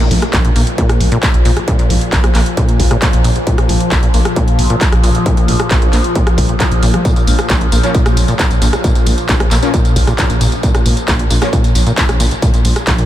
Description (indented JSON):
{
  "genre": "driving peak-time techno",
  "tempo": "134 BPM",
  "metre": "4/4",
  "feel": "straight",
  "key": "unclear",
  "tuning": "A4 = 440 Hz",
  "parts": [
    { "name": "acid bass, saw", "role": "riff", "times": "0.0-13.0 s", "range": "Bb1 to Bb3", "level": "-19 LUFS", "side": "equal", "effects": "sidechain pumping, ping-pong delay" },
    { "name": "overtone-sweeping drone", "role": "drone", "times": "0.5-13.1 s", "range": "Bb2 to F3", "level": "-20 LUFS", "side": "left 2 dB", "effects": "chorus, built-in reverb, phaser, sidechain pumping" },
    { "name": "techno drum kit", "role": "drums", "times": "0.0-13.1 s", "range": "handclaps, hi-hat, rim click, tambourine", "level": "-18 LUFS", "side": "equal", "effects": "none" },
    { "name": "dark detuned saw bass", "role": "bass", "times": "0.1-13.0 s", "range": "Bb1", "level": "-15 LUFS", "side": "equal", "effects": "sidechain pumping" },
    { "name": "electronic kick drum", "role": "drums", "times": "0.3-13.0 s", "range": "none", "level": "-14 LUFS", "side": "equal", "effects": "distortion" },
    { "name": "rave stab", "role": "stabs", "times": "7.8-11.5 s", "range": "F3 to Db4", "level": "-23 LUFS", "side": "left 2 dB", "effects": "none" }
  ],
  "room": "light reverb, digital ambience",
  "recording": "none",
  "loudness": "-10 LUFS",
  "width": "side -12 dB against mid",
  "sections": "0.0-13.1 A section",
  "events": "filter sweep on acid bass 0.0-13.1",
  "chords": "0.0 Bb5",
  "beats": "0.33 0.78 1.23 | 1.68 2.12 2.57 3.02 | 3.47 3.92 4.36 4.81 | 5.26 5.71 6.16 6.60 | 7.05 7.50 7.95 8.39 | 8.84 9.29 9.74 10.19 | 10.63 11.08 11.53 11.98 | 12.42 12.87"
}